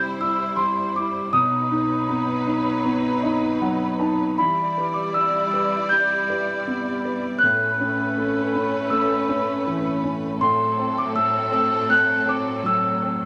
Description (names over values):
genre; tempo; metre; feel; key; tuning
children's music, lullaby; 80 BPM; 4/4; rubato; E minor; A4 = 442 Hz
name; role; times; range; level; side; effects
felt-muted upright piano; accompaniment; 0.0-13.3 s; A2 to A5; -28 LUFS; equal; none
clear studio string section; sustained chords; 0.0-13.3 s; A2 to D5; -29 LUFS; equal; none
large celesta; melody; 0.2-13.3 s; B5 to G6; -24 LUFS; equal; none
room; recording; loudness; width
moderate studio reverb, RT60 0.7 s; none; -22 LUFS; mono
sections
0.0-13.3 A section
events
felt piano fill 2.8-4.4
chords
0.0 C; 1.3 B; 4.4 Em7; 7.4 Aadd9; 10.4 F#dim/A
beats
0.57 | 1.32 2.08 2.84 3.61 | 4.38 5.16 5.92 6.67 | 7.42 8.16 8.90 9.65 | 10.40 11.14 11.89 12.65